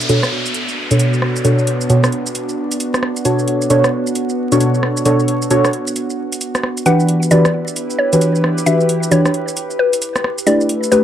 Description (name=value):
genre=UK garage, two-step garage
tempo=133 BPM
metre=4/4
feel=swing 62% on 16ths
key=B minor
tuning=A4 = 440 Hz
part: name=deep mellow chord stab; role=stabs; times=0.0-11.0 s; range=B2 to C#5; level=-14 LUFS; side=equal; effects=chorus, phaser, cassette tape, tape echo
part: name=house drum kit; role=drums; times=0.0-11.0 s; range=hi-hat, rim click, shaker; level=-22 LUFS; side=right 1 dB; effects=none
part: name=downlifter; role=sound effects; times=0.0-3.2 s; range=none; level=-24 LUFS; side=equal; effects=none
part: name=warbly tape-like pad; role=texture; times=0.0-11.0 s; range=B3 to D6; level=-23 LUFS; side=right 1 dB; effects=chorus, built-in reverb
part: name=mallet-like synth pluck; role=melody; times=6.9-11.0 s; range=B4 to F#5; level=-18 LUFS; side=left 1 dB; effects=chorus, tape echo
room=wet studio reverb, RT60 0.5 s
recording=dry, gritty hardware recording, vinyl crackle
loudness=-13 LUFS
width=side -10 dB against mid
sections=0.0-11.0 A section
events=none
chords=0.0 Bm9; 6.9 Em9; 10.2 A9sus4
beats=0.09 0.54 0.99 | 1.45 1.90 2.35 2.80 | 3.25 3.70 4.15 4.60 | 5.05 5.50 5.96 6.41 | 6.86 7.31 7.76 8.21 | 8.66 9.11 9.56 10.02 | 10.47 10.92